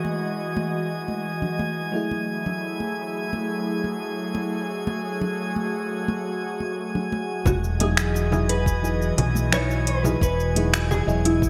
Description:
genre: sunset chillout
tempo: 87 BPM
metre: 4/4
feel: straight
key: unclear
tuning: A4 = 438 Hz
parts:
  - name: mellow FM electric piano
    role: accompaniment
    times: 0.0-11.5 s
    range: F#3 to D#5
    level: -33 LUFS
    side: equal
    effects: chorus, phaser
  - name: airy breathy pad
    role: sustained chords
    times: 0.0-11.5 s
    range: E3 to G#5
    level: -31 LUFS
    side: equal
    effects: chorus
  - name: congas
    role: percussion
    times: 0.0-10.7 s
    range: none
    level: -33 LUFS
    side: equal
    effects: none
  - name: drifting glass-harmonics texture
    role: texture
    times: 0.0-11.5 s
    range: G#5 to G#6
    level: -36 LUFS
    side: equal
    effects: chorus, built-in reverb
  - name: mellow electric guitar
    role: melody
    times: 7.5-11.5 s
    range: E4 to C#5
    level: -30 LUFS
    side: equal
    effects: lush chorus, delay
  - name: mellow fretless electric bass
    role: bass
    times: 7.5-11.5 s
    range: E1 to B1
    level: -26 LUFS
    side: equal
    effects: tube saturation
  - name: electronic kick drum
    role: drums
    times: 7.5-11.5 s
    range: none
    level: -25 LUFS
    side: equal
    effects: overdrive, studio reverb
  - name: smooth R&B drum kit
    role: drums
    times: 7.5-11.5 s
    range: congas, finger snaps, hi-hat, shaker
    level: -28 LUFS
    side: equal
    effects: overdrive, studio reverb, gated reverb
room: moderate plate reverb, RT60 3.0 s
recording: bright 1980s-style digital production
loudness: -25 LUFS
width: mono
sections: 0.0-7.5 A section; 7.5-11.5 B section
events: none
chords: 0.0 Emaj9; 1.9 F#m9; 7.5 Emaj9

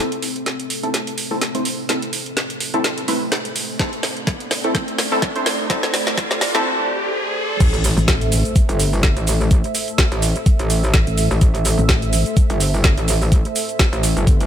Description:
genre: bass house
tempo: 126 BPM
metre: 4/4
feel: swing 56% on 16ths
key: A minor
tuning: A4 = 439 Hz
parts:
  - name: dark analog pad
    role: sustained chords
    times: 0.0-14.5 s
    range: A3 to E5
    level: -27 LUFS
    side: right 2 dB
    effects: chorus, sidechain pumping
  - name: orchestra-hit-like synth stab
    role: stabs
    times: 0.0-6.6 s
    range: A3 to C5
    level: -23 LUFS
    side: equal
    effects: built-in reverb, sidechain pumping, tape echo
  - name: riser and impact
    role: sound effects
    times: 1.5-9.5 s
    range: none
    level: -28 LUFS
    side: equal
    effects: none
  - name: deep dark ambient pad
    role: texture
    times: 0.0-6.7 s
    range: C4 to E5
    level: -34 LUFS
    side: left 3 dB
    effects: chorus, built-in reverb, sidechain pumping
  - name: garage drum kit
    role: drums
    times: 0.1-14.5 s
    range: cabasa, crash cymbal, hi-hat, snare drum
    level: -22 LUFS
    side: right 1 dB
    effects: overdrive
  - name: electronic kick drum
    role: drums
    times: 3.8-14.4 s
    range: none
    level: -15 LUFS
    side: equal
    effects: overdrive
  - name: metallic wobble bass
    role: bass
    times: 7.6-14.5 s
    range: G1 to A1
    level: -19 LUFS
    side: equal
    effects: chorus, overdrive, sidechain pumping
  - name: pulsing pluck wobble bass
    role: bass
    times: 8.0-12.2 s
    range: A1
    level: -18 LUFS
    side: equal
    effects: chorus, sidechain pumping
room: light reverb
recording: high-pass filter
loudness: -16 LUFS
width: side -10 dB against mid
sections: 0.0-7.6 A section; 7.6-14.5 B section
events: build-up 0.0-7.6; drum fill 0.0-6.7; filter sweep on synth stab 0.0-7.6; filter sweep on analog synth pad 0.0-7.6; riser 1.5-7.6; break 6.7-7.6; drop 7.6-14.5; impact 7.6-9.5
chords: 0.0 Am

